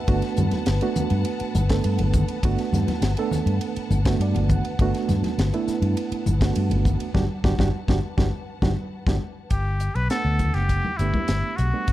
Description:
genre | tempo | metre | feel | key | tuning
electric jazz fusion | 102 BPM | 4/4 | straight | G major | A4 = 440 Hz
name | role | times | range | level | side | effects
bright reed electric piano | accompaniment | 0.0-11.9 s | G3 to F#5 | -27 LUFS | right 6 dB | medium tremolo
warm studio string section | sustained chords | 0.0-9.5 s | B4 to A5 | -36 LUFS | left 4 dB | none
fingered electric bass | bass | 0.1-11.9 s | F#1 to G2 | -23 LUFS | left 1 dB | none
tight funk drum kit | drums | 0.1-11.9 s | hi-hat, kick drum, ride cymbal, snare drum | -26 LUFS | left 1 dB | none
congas | percussion | 0.4-11.3 s | none | -28 LUFS | left 1 dB | none
trumpet with straight mute | melody | 9.5-11.9 s | E4 to B4 | -27 LUFS | left 1 dB | none
room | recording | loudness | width
light reverb | dark, warm production | -20 LUFS | side -14 dB against mid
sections
0.0-9.5 A section; 9.5-11.9 B section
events
reed electric piano fill 3.9-4.8; band accent 7.1-9.5; drum fill 8.9-9.5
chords
0.0 Gmaj9

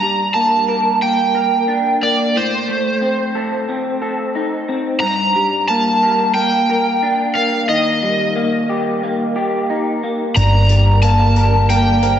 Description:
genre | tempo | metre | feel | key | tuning
post-rock | 90 BPM | 4/4 | straight | G minor | A4 = 440 Hz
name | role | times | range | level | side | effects
crunchy overdriven guitar | melody | 0.0-12.2 s | C5 to Bb5 | -16 LUFS | right 1 dB | analog chorus, analog delay
electric guitar through a small old amp | arpeggios | 0.0-12.2 s | G2 to Bb4 | -19 LUFS | left 1 dB | ensemble chorus, analog delay
muted studio string section | sustained chords | 10.4-12.2 s | D3 to Bb4 | -26 LUFS | right 1 dB | none
vibraphone with soft mallets | arpeggios | 10.4-12.2 s | Bb4 to D5 | -26 LUFS | right 3 dB | analog delay
hollow-body short-scale fingered electric bass | bass | 10.4-12.2 s | G1 | -13 LUFS | equal | none
hi-hat | drums | 10.4-12.2 s | none | -33 LUFS | left 5 dB | none
room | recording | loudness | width
wet lush hall reverb, RT60 1.9 s, small room ambience | dreamy mix soaked in reverb, nothing above 8.0 kHz | -14 LUFS | side -10 dB against mid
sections
0.0-12.2 A section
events
none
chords
0.0 Gm; 2.4 Adim; 5.0 Gm; 7.7 Eb; 10.4 Gm

